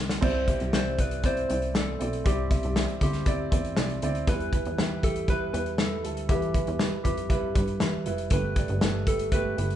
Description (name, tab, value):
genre	piano-driven pop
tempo	119 BPM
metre	4/4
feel	straight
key	C major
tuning	A4 = 440 Hz
part	warm baby grand piano	accompaniment	0.0-9.8 s	G2 to E5	-31 LUFS	right 4 dB	none
part	plucky analog bass	bass	0.0-9.8 s	F1 to G2	-31 LUFS	equal	none
part	natural country drum kit	drums	0.1-9.8 s	crash cymbal, hi-hat, kick drum, snare drum	-27 LUFS	left 1 dB	none
part	soft struck synth lead	melody	0.2-9.8 s	G4 to C5	-32 LUFS	left 3 dB	chorus
room	moderate large studio reverb, RT60 0.9 s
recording	band playing live in one room, nothing above 10.3 kHz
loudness	-24 LUFS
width	side -11 dB against mid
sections	0.2-9.8 A section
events	drum fill 0.0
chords	0.2 Cadd9; 4.3 Em; 8.3 Gadd9